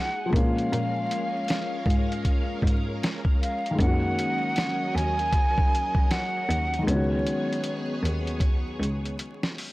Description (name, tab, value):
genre	lo-fi hip hop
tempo	78 BPM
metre	4/4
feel	swing 62% on 16ths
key	F# major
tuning	A4 = 440 Hz
part	breathy mellow silver concert flute	melody	0.0-8.0 s	C#5 to G#5	-29 LUFS	right 1 dB	low-pass filter
part	felt-muted upright piano	accompaniment	0.0-9.7 s	D#3 to F#4	-31 LUFS	left 1 dB	low-pass filter
part	string machine, violins	sustained chords	0.0-9.7 s	F#3 to F#5	-34 LUFS	equal	ensemble chorus, low-pass filter
part	rich cello	bass	0.3-9.1 s	C#2 to A#2	-29 LUFS	equal	transformer saturation
part	lo-fi sampler-style drum kit	drums	0.3-9.7 s	hi-hat, kick drum, snare drum	-25 LUFS	equal	none
room	small room ambience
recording	dry, gritty hardware recording, vinyl crackle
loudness	-23 LUFS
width	side -19 dB against mid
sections	0.0-9.7 A section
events	drum fill 6.9-9.7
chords	0.3 A#m7; 3.8 F#6; 6.9 C#7sus4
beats	| 0.71 1.48 2.25 3.02 | 3.79 4.55 5.32 6.09 | 6.86 7.63 8.40 9.17